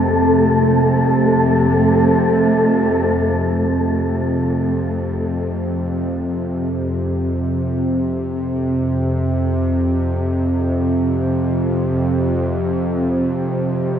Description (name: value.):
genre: dark ambient drone.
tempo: free time.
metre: none.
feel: none.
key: F major.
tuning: A4 = 440 Hz.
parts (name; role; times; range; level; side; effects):
bowed-like drone; drone; 0.0-14.0 s; F2 to C3; -17 LUFS; equal; built-in reverb.
wind-like tuned noise texture; texture; 0.0-3.6 s; A3 to A4; -18 LUFS; equal; built-in reverb.
room: wet cathedral reverb, RT60 5.1 s.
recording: none.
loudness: -16 LUFS.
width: side -8 dB against mid.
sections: 0.0-3.6 A section; 3.6-14.0 B section.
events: none.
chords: 0.0 F.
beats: free time.